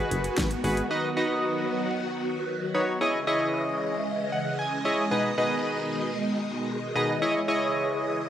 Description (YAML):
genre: synth-pop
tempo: 114 BPM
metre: 4/4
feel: straight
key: unclear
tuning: A4 = 440 Hz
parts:
  - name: warm analog keys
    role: accompaniment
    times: 0.0-8.2 s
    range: B2 to G#5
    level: -26 LUFS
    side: equal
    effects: chorus
  - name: phased string machine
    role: sustained chords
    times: 0.0-8.3 s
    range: B2 to D#5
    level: -29 LUFS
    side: equal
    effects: ensemble chorus, phaser
  - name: solid FM bass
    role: bass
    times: 0.0-0.8 s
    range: F#1 to G#1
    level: -30 LUFS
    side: equal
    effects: none
  - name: pop drum kit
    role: drums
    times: 0.1-0.9 s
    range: hi-hat, kick drum, snare drum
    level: -30 LUFS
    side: equal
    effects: none
room: light reverb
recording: dry, gritty hardware recording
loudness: -24 LUFS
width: side -10 dB against mid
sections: 0.9-8.3 A section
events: synth keys fill 4.1-5.1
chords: 0.0 G#m7; 0.9 B; 3.0 C#madd9; 5.1 G#m/B; 7.2 C#madd9